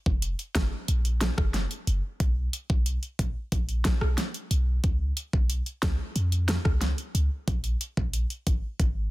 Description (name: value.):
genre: dancehall.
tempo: 91 BPM.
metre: 4/4.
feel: straight.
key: F# major.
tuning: A4 = 440 Hz.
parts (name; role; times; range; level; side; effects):
clean 808-style bass; bass; 0.1-9.1 s; E#1 to E#2; -27 LUFS; equal; none.
pop drum kit; drums; 0.1-8.9 s; hi-hat, kick drum, rim click, snare drum; -27 LUFS; equal; overdrive.
room: little or no reverb.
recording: dense, heavily limited modern master.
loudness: -25 LUFS.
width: side -18 dB against mid.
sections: 0.0-9.1 A section.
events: none.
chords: none.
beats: 0.22 0.88 1.54 | 2.20 2.86 3.52 4.18 | 4.84 5.50 6.16 6.82 | 7.48 8.14 8.79.